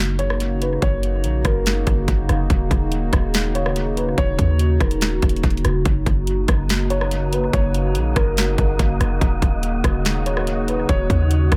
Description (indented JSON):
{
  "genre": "hip hop, atmospheric cloud-rap",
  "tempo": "143 BPM",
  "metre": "4/4",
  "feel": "half-time",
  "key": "F# major",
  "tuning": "A4 = 442 Hz",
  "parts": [
    { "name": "dark analog pad", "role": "sustained chords", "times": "0.0-11.6 s", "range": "C#3 to F#4", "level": "-27 LUFS", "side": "equal", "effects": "chorus, phaser, sidechain pumping" },
    { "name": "warm 808-style bass", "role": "bass", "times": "0.0-11.6 s", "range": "D#1 to D#2", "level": "-23 LUFS", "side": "equal", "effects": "none" },
    { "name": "felt-muted upright piano", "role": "melody", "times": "0.2-11.6 s", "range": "A#4 to C#5", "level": "-30 LUFS", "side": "equal", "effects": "dub echo" },
    { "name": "trap drum kit", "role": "drums", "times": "0.2-11.6 s", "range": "hi-hat, kick drum, rim click, snare drum", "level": "-24 LUFS", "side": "equal", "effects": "dub echo" },
    { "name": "wind-like tuned noise texture", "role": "texture", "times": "6.3-11.6 s", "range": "A#3 to D#5", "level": "-35 LUFS", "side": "equal", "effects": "built-in reverb" }
  ],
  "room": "little or no reverb",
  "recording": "echo-heavy mix",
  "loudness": "-20 LUFS",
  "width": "mono",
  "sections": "0.0-11.6 A section",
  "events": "none",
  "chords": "0.0 F#6; 2.5 D#m7; 5.9 F#6; 9.2 D#m7"
}